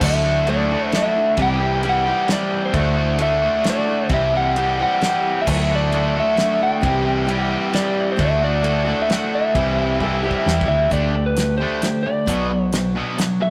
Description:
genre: folk rock and heartland rock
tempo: 132 BPM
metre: 3/4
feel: straight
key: D mixolydian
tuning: A4 = 439 Hz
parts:
  - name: lightly driven lead guitar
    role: melody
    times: 0.0-13.5 s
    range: B4 to G5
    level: -24 LUFS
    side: equal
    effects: none
  - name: picked steel-string acoustic guitar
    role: accompaniment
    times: 0.0-13.5 s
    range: B2 to G4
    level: -29 LUFS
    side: equal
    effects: none
  - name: warm baby grand piano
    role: accompaniment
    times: 0.0-10.9 s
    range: F#4 to F#5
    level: -39 LUFS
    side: equal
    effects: none
  - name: crunchy overdriven guitar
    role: riff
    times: 0.0-13.5 s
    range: B2 to G4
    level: -24 LUFS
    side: equal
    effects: none
  - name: hollow-body short-scale fingered electric bass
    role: bass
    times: 0.0-13.0 s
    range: B1 to E2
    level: -25 LUFS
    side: equal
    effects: none
  - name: damped 70s drum kit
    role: drums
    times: 0.0-13.3 s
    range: crash cymbal, hi-hat, kick drum, ride cymbal, snare drum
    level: -29 LUFS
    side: equal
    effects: none
  - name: electric slide guitar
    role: second line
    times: 10.0-10.5 s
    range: G4 to A4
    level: -31 LUFS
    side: equal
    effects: none
room: moderate stone room reverb, RT60 1.1 s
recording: rough rehearsal-room recording, warm saturation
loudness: -19 LUFS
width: mono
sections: 0.0-10.9 A section; 10.9-13.5 B section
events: drum fill 10.0-10.9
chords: 0.0 Dadd9; 1.4 C; 2.7 Dadd9; 4.1 C; 5.5 Dadd9; 6.8 C; 8.2 Dadd9; 9.6 C; 10.9 Dsus4; 12.3 Bm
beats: | 0.01 0.47 0.93 | 1.38 1.83 2.29 | 2.74 3.20 3.65 | 4.11 4.56 5.01 | 5.47 5.92 6.38 | 6.83 7.28 7.74 | 8.19 8.65 9.10 | 9.56 10.01 10.46 | 10.92 11.38 11.83 | 12.29 12.74 13.20

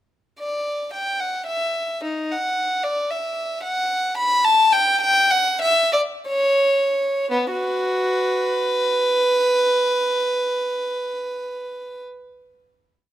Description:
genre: classical, baroque-style suite movement for unaccompanied violin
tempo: 54-77 BPM (dotted quarters)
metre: 6/8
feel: rubato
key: B minor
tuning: A4 = 440 Hz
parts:
  - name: rich violin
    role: solo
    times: 0.4-12.0 s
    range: B3 to B5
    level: -18 LUFS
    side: equal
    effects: none
room: moderate recital hall reverb, RT60 1.7 s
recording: close, detailed microphones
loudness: -18 LUFS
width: side -12 dB against mid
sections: 0.4-7.3 A section; 7.3-11.4 final chord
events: slowing down 2.8-7.3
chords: none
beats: | 0.39 1.20 | 2.04 2.84 | 3.64 4.45 | 5.31 6.25 | 7.31 8.34 | 9.37 10.39

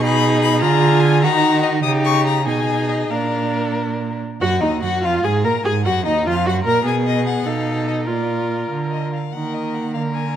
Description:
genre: quick classical-period movement for string quartet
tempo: 91-101 BPM (dotted quarters)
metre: 6/8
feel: rubato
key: Eb minor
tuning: A4 = 440 Hz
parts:
  - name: warm violin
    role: melody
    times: 0.0-10.4 s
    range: D5 to Eb6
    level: -23 LUFS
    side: left 10 dB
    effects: none
  - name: warm violin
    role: second line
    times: 0.0-10.4 s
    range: Eb4 to Bb4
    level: -23 LUFS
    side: left 3 dB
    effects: none
  - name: warm viola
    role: accompaniment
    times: 0.0-10.4 s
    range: Bb3 to Bb4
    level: -22 LUFS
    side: right 2 dB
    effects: none
  - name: rich cello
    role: bass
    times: 0.0-10.4 s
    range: Eb2 to Eb3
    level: -21 LUFS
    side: right 4 dB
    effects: none
room: moderate scoring stage reverb, RT60 1.8 s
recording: none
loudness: -16 LUFS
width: side -10 dB against mid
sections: 0.0-4.4 A section; 4.4-10.4 B section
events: none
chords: 0.0 Abm/Cb; 0.6 Bb7/D; 1.2 Ebm; 1.8 Eb7/Db; 2.5 Abm/Cb; 3.1 Bb; 4.4 Ebm; 5.0 Bb5/F; 5.6 Ebm; 6.3 Bb5/F; 6.9 Abm/Cb; 7.5 B7; 8.1 Bb; 9.3 Eb5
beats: 0.03 | 0.62 1.23 | 1.84 2.47 | 3.11 3.77 | 4.41 5.03 | 5.65 6.26 | 6.86 7.46 | 8.08 8.71 | 9.33 9.95

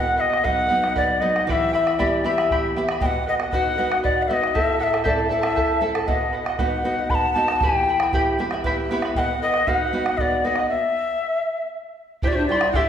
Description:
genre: andean folk, Andean ensemble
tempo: 78 BPM (dotted quarters)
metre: 6/8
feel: straight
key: unclear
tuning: A4 = 440 Hz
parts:
  - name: hollow quena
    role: melody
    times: 0.0-12.9 s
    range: C5 to B5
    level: -22 LUFS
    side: left 2 dB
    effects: none
  - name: charango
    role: accompaniment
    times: 0.0-12.9 s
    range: E4 to C6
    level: -25 LUFS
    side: right 1 dB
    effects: none
  - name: nylon-string guitar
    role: accompaniment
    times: 0.0-12.9 s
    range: A2 to E5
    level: -27 LUFS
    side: right 1 dB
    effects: none
  - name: bombo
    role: percussion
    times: 0.3-12.9 s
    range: none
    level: -27 LUFS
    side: right 1 dB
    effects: none
  - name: mellow pan flute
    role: second line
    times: 12.2-12.9 s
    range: D4 to G4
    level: -25 LUFS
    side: right 2 dB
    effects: none
room: wet recital hall reverb, RT60 1.7 s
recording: recorded in a church or concert hall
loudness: -19 LUFS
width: side -9 dB against mid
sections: 0.0-12.2 A section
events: nylon-string guitar fill 8.4-9.2; stop 10.7-12.2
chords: 0.0 B; 1.5 Em; 3.0 B; 4.6 Am; 6.1 B; 7.6 Em; 9.2 B; 10.7 N.C.; 12.2 C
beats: 0.70 | 1.47 2.25 | 3.02 3.78 | 4.55 5.32 | 6.09 6.86 | 7.63 8.39 | 9.16 9.93 | 10.70 11.46 | 12.23

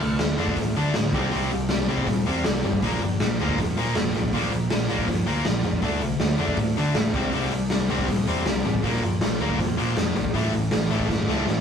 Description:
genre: punk rock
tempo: 160 BPM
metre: 4/4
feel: straight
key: unclear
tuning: A4 = 439 Hz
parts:
  - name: distorted electric guitar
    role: riff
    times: 0.0-11.6 s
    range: A2 to D4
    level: -26 LUFS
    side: left 4 dB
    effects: overdrive
  - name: sludgy distorted guitar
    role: riff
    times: 0.0-11.6 s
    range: A2 to D4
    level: -29 LUFS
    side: right 6 dB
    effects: overdrive
  - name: overdriven picked electric bass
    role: bass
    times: 0.0-11.6 s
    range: F1 to D3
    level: -29 LUFS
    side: equal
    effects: none
  - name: raw garage drum kit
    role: drums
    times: 0.0-11.6 s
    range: hi-hat, kick drum, snare drum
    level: -25 LUFS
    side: equal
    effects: none
room: light reverb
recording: rough rehearsal-room recording, tube saturation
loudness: -21 LUFS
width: side -7 dB against mid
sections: 0.0-11.6 A section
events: drum fill 11.1-11.6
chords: 0.0 Dm; 1.1 C5; 2.8 Bb5; 5.8 D5; 7.1 C5; 8.8 Bb5; 10.3 A5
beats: 0.20 0.57 0.95 | 1.32 1.70 2.07 2.45 | 2.83 3.20 3.58 3.95 | 4.33 4.70 5.08 5.45 | 5.83 6.20 6.58 6.96 | 7.33 7.71 8.08 8.46 | 8.84 9.21 9.59 9.96 | 10.34 10.72 11.09 11.47

